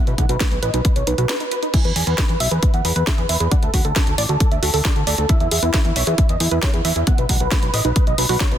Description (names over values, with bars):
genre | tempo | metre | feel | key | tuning
uplifting trance | 135 BPM | 4/4 | straight | E major | A4 = 441 Hz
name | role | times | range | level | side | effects
big supersaw lead | melody | 0.0-8.6 s | E4 to G#5 | -24 LUFS | right 1 dB | phaser, sidechain pumping, low-pass filter, digital delay
fat analog bass | bass | 0.1-8.6 s | A1 to E2 | -22 LUFS | equal | sidechain pumping
house drum kit | drums | 0.1-8.6 s | crash cymbal, hi-hat, snare drum | -23 LUFS | equal | sidechain pumping on hats, sidechain pumping on cymbals
wide unison pluck | arpeggios | 0.2-8.6 s | A3 to E5 | -27 LUFS | right 5 dB | sidechain pumping, digital delay
electronic kick drum | drums | 0.2-8.5 s | none | -18 LUFS | equal | none
room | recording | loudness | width
digital ambience | dense, heavily limited modern master | -16 LUFS | side -10 dB against mid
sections
0.0-8.6 A section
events
break 1.3-1.7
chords
0.0 B; 1.7 E; 3.5 D; 5.3 E; 7.1 B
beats
0.41 0.85 1.29 | 1.74 2.18 2.63 3.07 | 3.52 3.96 4.41 4.85 | 5.29 5.74 6.18 6.63 | 7.07 7.52 7.96 8.40